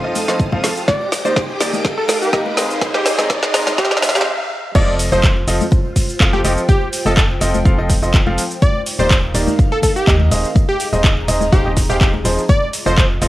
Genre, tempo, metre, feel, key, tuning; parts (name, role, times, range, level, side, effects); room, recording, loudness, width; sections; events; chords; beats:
piano house; 124 BPM; 4/4; swing 53% on 16ths; A4 = 440 Hz
string machine, violins; sustained chords; 0.0-4.2 s; Eb4 to Eb6; -25 LUFS; equal; ensemble chorus, sidechain pumping
bright baby grand piano; riff; 0.0-13.3 s; Eb3 to F5; -21 LUFS; right 1 dB; sidechain pumping, low-pass filter
tambourine and congas; percussion; 0.0-13.3 s; -28 LUFS; left 7 dB
riser; sound effects; 0.0-4.3 s; -25 LUFS; equal
airy breathy pad; texture; 0.0-13.3 s; Eb4 to Bb5; -27 LUFS; equal; chorus, sidechain pumping
garage drum kit; drums; 0.2-13.3 s; crash cymbal, handclaps, hi-hat, shaker, snare drum; -20 LUFS; equal; overdrive, cassette tape
electronic kick drum; drums; 0.4-13.1 s; -15 LUFS; equal; cassette tape
plucky unison lead; melody; 0.9-13.1 s; G4 to D5; -20 LUFS; equal; analog delay
organ-like FM bass; bass; 4.8-13.3 s; Eb1 to Eb2; -19 LUFS; equal; sidechain pumping
light reverb; home recording on cassette, high-pass filter; -13 LUFS; side -16 dB against mid
0.0-4.8 A section; 4.8-13.3 B section
build-up 0.0-4.8; drum fill 0.0-4.3; riser 0.0-4.3; filter sweep on digital synth lead 0.0-4.8; stop 4.3-4.8; drop 4.8-13.3
0.0 F7; 0.9 Ebmaj7; 2.6 Ab/Eb; 4.8 F7; 8.6 Ebmaj7; 10.3 Ab/Eb; 12.5 F7
0.40 | 0.88 1.36 1.85 2.33 | 2.81 3.30 3.78 4.27 | 4.75 5.24 5.72 6.20 | 6.69 7.17 7.65 8.14 | 8.62 9.11 9.59 10.07 | 10.56 11.04 11.53 12.01 | 12.49 12.98